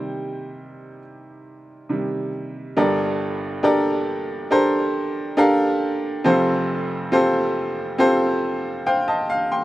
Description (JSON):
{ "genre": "pop", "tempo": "69 BPM", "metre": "4/4", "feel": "straight", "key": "G minor", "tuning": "A4 = 442 Hz", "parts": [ { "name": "clear upright piano", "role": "solo", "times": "0.0-9.6 s", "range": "F1 to C6", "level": "-19 LUFS", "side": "equal", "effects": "slapback echo" } ], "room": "little or no reverb", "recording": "recorded outdoors, with no room sound", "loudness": "-19 LUFS", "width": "side -16 dB against mid", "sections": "0.0-2.8 A section; 2.8-9.6 B section", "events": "upright piano solo 0.0-2.8; upright piano fill 8.4-9.6", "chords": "0.0 Cm; 2.8 Gmadd9; 6.2 Fadd9" }